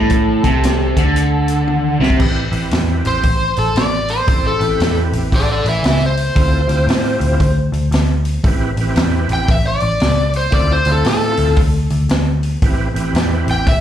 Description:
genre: blues rock power trio and southern rock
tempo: 115 BPM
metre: 4/4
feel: swing 63% on 8ths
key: A minor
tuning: A4 = 440 Hz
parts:
  - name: overdriven slide guitar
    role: melody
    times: 0.0-13.8 s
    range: A4 to G5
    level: -19 LUFS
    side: left 1 dB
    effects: slapback echo, tape echo
  - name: overdriven electric guitar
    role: riff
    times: 0.0-2.2 s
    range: A2 to D3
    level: -16 LUFS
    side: right 1 dB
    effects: slapback echo
  - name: vintage muted picked electric bass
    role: bass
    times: 0.0-13.8 s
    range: A1 to A2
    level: -17 LUFS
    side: equal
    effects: none
  - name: vintage drum kit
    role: drums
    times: 0.1-13.8 s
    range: crash cymbal, hi-hat, kick drum, snare drum, toms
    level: -18 LUFS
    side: equal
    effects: none
  - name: overdriven tonewheel organ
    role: sustained chords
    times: 2.2-13.7 s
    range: C4 to B4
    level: -23 LUFS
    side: right 4 dB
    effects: slow rotary speaker, chorus vibrato
room: light reverb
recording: live gig heard through the venue's PA, club reverb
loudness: -13 LUFS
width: side -10 dB against mid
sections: 0.0-2.2 A section; 2.2-13.8 B section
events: drum fill 1.7-2.2; electric slide guitar solo 2.2-13.8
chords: 0.0 Am; 2.2 Am9; 6.4 Dm9; 8.5 Am9; 10.5 Dm9; 12.6 Am9

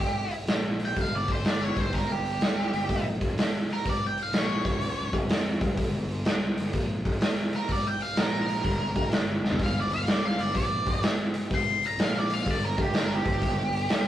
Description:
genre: blues rock power trio and southern rock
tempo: 125 BPM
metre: 4/4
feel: swing 66% on 8ths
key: G minor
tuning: A4 = 440 Hz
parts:
  - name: octave-fuzz lead guitar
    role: melody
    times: 0.0-14.1 s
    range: G4 to C6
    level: -30 LUFS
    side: right 1 dB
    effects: distortion
  - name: raw garage drum kit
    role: drums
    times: 0.0-14.0 s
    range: hi-hat, kick drum, snare drum, toms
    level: -26 LUFS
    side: equal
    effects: none
  - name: fuzz fingered electric bass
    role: bass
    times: 0.5-14.1 s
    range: F1 to F2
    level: -33 LUFS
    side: equal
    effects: overdrive
room: light reverb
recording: rough rehearsal-room recording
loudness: -24 LUFS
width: side -12 dB against mid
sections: 0.0-14.1 A section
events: lead electric guitar solo 0.0-14.1; drum fill 9.4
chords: 0.5 Gm/Bb; 1.0 Gm; 4.6 N.C.; 5.1 Gm; 8.2 N.C.; 8.7 G5; 12.0 Bb; 12.5 N.C.

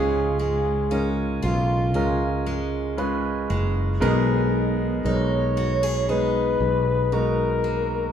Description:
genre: pop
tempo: 58 BPM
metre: 4/4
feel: straight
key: unclear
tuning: A4 = 439 Hz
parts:
  - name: breathy flugelhorn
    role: melody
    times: 0.0-8.1 s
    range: F4 to Db5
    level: -24 LUFS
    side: left 2 dB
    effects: none
  - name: warm concert grand piano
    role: accompaniment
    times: 0.0-8.1 s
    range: Ab2 to Db5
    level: -26 LUFS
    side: right 1 dB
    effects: none
  - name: picked steel-string acoustic guitar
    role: arpeggios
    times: 0.0-8.1 s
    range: Cb3 to Ab4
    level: -31 LUFS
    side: right 1 dB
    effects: none
  - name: fretless electric bass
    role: bass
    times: 0.0-8.1 s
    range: Gb1 to Db2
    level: -25 LUFS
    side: left 1 dB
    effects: none
room: moderate large studio reverb, RT60 1.3 s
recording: band playing live in one room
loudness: -20 LUFS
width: side -9 dB against mid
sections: 0.0-8.1 A section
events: none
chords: 0.0 Db; 4.0 Abmadd9/Cb

